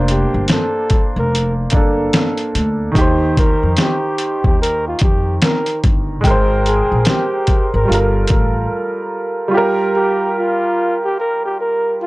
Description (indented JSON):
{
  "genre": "lo-fi hip hop",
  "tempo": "73 BPM",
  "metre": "4/4",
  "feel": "swing 62% on 16ths",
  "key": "G minor",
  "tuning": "A4 = 440 Hz",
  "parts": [
    { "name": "clear upright piano", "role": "accompaniment", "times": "0.0-12.1 s", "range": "Eb3 to G5", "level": "-18 LUFS", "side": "right 1 dB", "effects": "cassette tape" },
    { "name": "upright bass", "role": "bass", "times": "0.0-8.6 s", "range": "F1 to F2", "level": "-19 LUFS", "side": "equal", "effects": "none" },
    { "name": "mellow flugelhorn", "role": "melody", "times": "0.1-12.1 s", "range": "F4 to Bb4", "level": "-20 LUFS", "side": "equal", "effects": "analog delay" },
    { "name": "dusty soul sampler-style drum kit", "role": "drums", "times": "0.1-8.5 s", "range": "hi-hat, kick drum, snare drum", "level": "-15 LUFS", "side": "equal", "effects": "overdrive" }
  ],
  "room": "little or no reverb",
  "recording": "dry, gritty hardware recording, transformer saturation",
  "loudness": "-14 LUFS",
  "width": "side -20 dB against mid",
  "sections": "0.0-9.5 A section; 9.5-12.1 B section",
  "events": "break 8.7-9.5",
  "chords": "0.0 Bbmaj9/F; 3.0 Eb6; 6.2 Abmaj9; 7.9 Gm9; 9.5 Gm7"
}